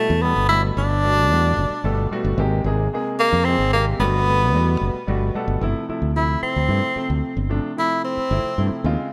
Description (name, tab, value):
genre	electric jazz fusion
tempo	74 BPM (dotted quarters)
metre	6/8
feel	straight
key	G major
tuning	A4 = 440 Hz
part	bright tenor saxophone	melody	0.0-8.8 s	A3 to E4	-23 LUFS	equal	delay
part	clear grand piano	accompaniment	0.0-9.1 s	B2 to F#5	-28 LUFS	equal	none
part	fretless electric bass	bass	0.1-9.0 s	F#1 to G2	-23 LUFS	equal	none
room	light reverb, small room reverb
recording	bright 1980s-style digital production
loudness	-20 LUFS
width	mono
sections	0.0-5.6 A section; 5.6-9.1 B section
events	grand piano fill 4.8-5.6; tenor saxophone solo 5.6-9.1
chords	0.0 Gmaj9; 2.4 Abmaj9; 4.0 Gmaj9; 5.6 G13sus4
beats	| 0.78 1.59 | 2.39 3.20 | 4.00 4.81 | 5.62 6.42 | 7.23 8.03 | 8.84